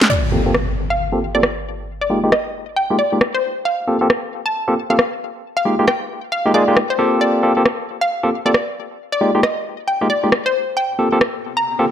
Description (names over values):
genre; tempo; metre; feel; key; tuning
UK garage, two-step garage; 135 BPM; 4/4; swing 62% on 16ths; G minor; A4 = 440 Hz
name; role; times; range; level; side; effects
garage drum kit; drums; 0.0-11.3 s; hi-hat, rim click, snare drum; -18 LUFS; equal; low-pass filter on snare, low-pass filter on hats
hollow square pluck; melody; 0.1-11.8 s; C5 to Bb5; -20 LUFS; left 1 dB; chorus, ping-pong delay
impact and riser; sound effects; 0.1-1.9, 11.3-11.9 s; none; -23 LUFS; equal; none
barky tine electric piano; stabs; 0.3-11.8 s; Ab3 to A4; -18 LUFS; equal; overdrive, low-pass filter, ping-pong delay
room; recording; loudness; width
moderate digital room reverb, RT60 1.2 s, digital ambience; none; -15 LUFS; side -9 dB against mid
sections
0.1-11.9 A section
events
impact 0.1-1.9; filter sweep on tine electric piano 0.1-11.9; riser 11.3-11.9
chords
0.1 Gm11; 1.7 Fm11; 3.7 Gm11; 5.2 Fm11; 7.2 Gm11; 8.8 Fm11; 10.8 Gm11